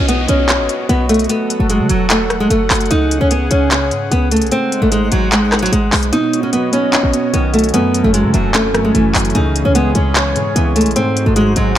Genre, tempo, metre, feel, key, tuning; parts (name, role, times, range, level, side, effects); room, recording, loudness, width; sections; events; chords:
hip hop, trap; 149 BPM; 4/4; half-time; C# minor; A4 = 442 Hz
nylon-string guitar; melody; 0.0-11.7 s; F#3 to D#4; -15 LUFS; equal; ping-pong delay
warm analog pad; sustained chords; 0.0-11.8 s; C#3 to F#5; -23 LUFS; equal; chorus
short 808-style bass; bass; 0.0-11.8 s; E1 to C#3; -17 LUFS; equal
downlifter; sound effects; 0.0-2.9 s; -27 LUFS; left 1 dB
trap drum kit; drums; 0.1-11.7 s; handclaps, hi-hat, rim click; -18 LUFS; equal
dark baby grand piano; accompaniment; 6.1-11.8 s; F#2 to C#5; -18 LUFS; right 1 dB
little or no reverb; -12 LUFS; side -11 dB against mid
0.0-11.8 A section
kick muted 6.1-6.9
0.0 Badd9; 1.3 F#m7; 2.9 C#5; 4.5 G#7; 6.1 Badd9; 7.7 F#m7; 9.3 C#m; 11.0 G#7